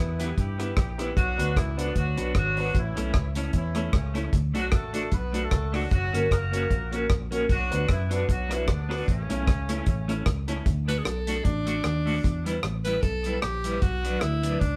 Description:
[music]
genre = ska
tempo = 152 BPM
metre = 4/4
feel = swing 56% on 8ths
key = D major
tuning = A4 = 440 Hz
[part]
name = warm horn section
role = melody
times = 0.0-10.2 s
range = C#3 to B4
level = -34 LUFS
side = equal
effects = none
[part]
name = vintage muted fingered electric bass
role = bass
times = 0.0-14.8 s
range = F#1 to G2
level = -31 LUFS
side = equal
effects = none
[part]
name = clean electric guitar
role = accompaniment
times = 0.2-14.6 s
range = F#3 to G4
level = -35 LUFS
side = equal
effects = tremolo
[part]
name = dark upright piano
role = stabs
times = 0.2-10.6 s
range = A3 to B4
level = -35 LUFS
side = equal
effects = none
[part]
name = deep reggae drum kit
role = drums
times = 0.2-14.7 s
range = hi-hat, kick drum, rim click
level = -29 LUFS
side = equal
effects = none
[part]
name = edgy alto saxophone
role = melody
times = 10.9-14.8 s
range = D4 to B4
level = -32 LUFS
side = equal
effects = none
[sound]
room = moderate studio reverb, RT60 0.6 s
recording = band playing live in one room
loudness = -26 LUFS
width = mono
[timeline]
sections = 0.0-10.7 A section; 10.7-14.8 B section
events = alto saxophone solo 10.7-14.8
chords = 0.0 Em; 1.2 Bm; 2.7 A; 4.3 D; 5.9 F#; 7.5 Bm; 9.1 A; 10.7 D; 12.2 Em; 13.8 Bm

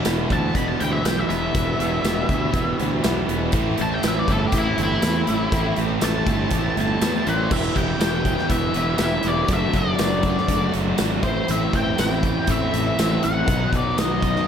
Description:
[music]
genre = classic rock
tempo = 121 BPM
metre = 4/4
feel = straight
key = E minor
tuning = A4 = 439 Hz
[part]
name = tonewheel organ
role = sustained chords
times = 0.0-14.5 s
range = B3 to F#5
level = -36 LUFS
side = equal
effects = none
[part]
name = overdriven semi-hollow guitar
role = riff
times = 0.0-14.5 s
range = E2 to G4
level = -28 LUFS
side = left 8 dB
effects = tremolo
[part]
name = overdriven semi-hollow guitar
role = riff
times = 0.0-14.5 s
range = E2 to G4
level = -27 LUFS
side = right 11 dB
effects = none
[part]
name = tight distorted guitar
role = riff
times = 0.0-14.5 s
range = A2 to B4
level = -29 LUFS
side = equal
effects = distortion
[part]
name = big rock drum kit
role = drums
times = 0.0-14.4 s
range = crash cymbal, hi-hat, kick drum, snare drum, tambourine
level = -25 LUFS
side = equal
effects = none
[part]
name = fuzz fingered electric bass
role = bass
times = 0.1-14.3 s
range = E1 to E2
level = -26 LUFS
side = equal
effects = overdrive
[part]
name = tambourine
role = percussion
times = 0.1-14.1 s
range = none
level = -40 LUFS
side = left 6 dB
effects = none
[part]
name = octave-fuzz lead guitar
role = melody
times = 0.3-14.5 s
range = E4 to B5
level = -26 LUFS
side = left 2 dB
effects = wah, distortion, slapback echo
[sound]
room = light reverb, studio ambience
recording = none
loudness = -19 LUFS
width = side -8 dB against mid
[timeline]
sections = 0.0-7.5 A section; 7.5-14.5 B section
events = lead electric guitar solo 0.0-7.5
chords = 0.0 Emadd9; 3.5 Am; 7.5 Em; 9.5 D/F#; 11.2 Am; 13.5 B

